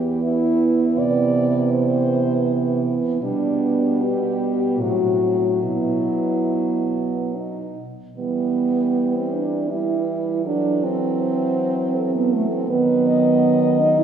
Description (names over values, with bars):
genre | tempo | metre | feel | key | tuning
classical, lyrical piece for horn quartet | 69-82 BPM | 3/4 | rubato | E minor | A4 = 440 Hz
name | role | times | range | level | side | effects
mellow French horn | melody | 0.0-14.0 s | D4 to D#5 | -23 LUFS | left 2 dB | none
mellow French horn | second line | 0.0-14.0 s | A3 to E4 | -21 LUFS | right 5 dB | none
mellow French horn | accompaniment | 0.0-14.0 s | E3 to G3 | -27 LUFS | left 1 dB | none
mellow French horn | bass | 0.0-14.0 s | E2 to E3 | -26 LUFS | right 2 dB | none
room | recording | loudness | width
wet concert hall reverb, RT60 1.8 s | heard from further back in the room, small room reverb | -18 LUFS | side -8 dB against mid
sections
0.0-8.2 A section; 8.2-14.0 B section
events
none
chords
0.0 Em; 1.0 Cmaj7; 3.2 G/B; 4.8 F#dim/A; 5.6 Bsus4; 8.2 Em; 10.5 F#m7b5/E; 12.7 B/D#